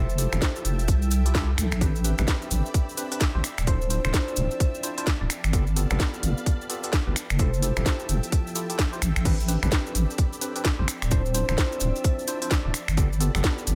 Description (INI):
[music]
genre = UK garage, two-step garage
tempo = 129 BPM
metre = 4/4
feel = swing 61% on 16ths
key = A minor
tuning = A4 = 440 Hz
[part]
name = Celtic harp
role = melody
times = 0.0-13.8 s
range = F4 to E5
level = -38 LUFS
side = equal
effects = delay
[part]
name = soft string machine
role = sustained chords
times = 0.0-13.8 s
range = D5 to E6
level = -44 LUFS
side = equal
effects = phaser, ensemble chorus, sidechain pumping
[part]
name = tine electric piano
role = stabs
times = 0.0-13.8 s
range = B3 to D5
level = -38 LUFS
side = equal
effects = overdrive
[part]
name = deep soft wobble bass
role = bass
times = 0.0-13.8 s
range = D1 to C2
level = -26 LUFS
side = equal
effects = chorus, sidechain pumping
[part]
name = ethereal airy pad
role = texture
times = 0.1-13.8 s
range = F3 to G5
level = -43 LUFS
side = equal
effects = ensemble chorus, built-in reverb, phaser, sidechain pumping
[part]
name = cabasa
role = percussion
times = 0.1-13.8 s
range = none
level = -38 LUFS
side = equal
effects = none
[part]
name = garage drum kit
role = drums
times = 0.2-13.8 s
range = crash cymbal, finger snaps, hi-hat, snare drum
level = -32 LUFS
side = equal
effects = none
[part]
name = electronic kick drum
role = drums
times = 0.4-13.6 s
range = none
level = -26 LUFS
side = equal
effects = none
[sound]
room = digital ambience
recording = none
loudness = -25 LUFS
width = mono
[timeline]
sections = 0.0-13.8 A section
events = none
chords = 0.0 Fmaj9; 1.8 Am11; 3.7 Dm9; 5.3 G9; 7.2 Fmaj9; 9.3 Am11; 11.1 Dm9; 12.7 G9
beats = 0.42 0.88 1.35 | 1.81 2.28 2.74 3.21 | 3.67 4.14 4.60 5.07 | 5.53 6.00 6.46 6.93 | 7.39 7.86 8.32 8.79 | 9.25 9.72 10.18 10.65 | 11.11 11.58 12.04 12.51 | 12.97 13.44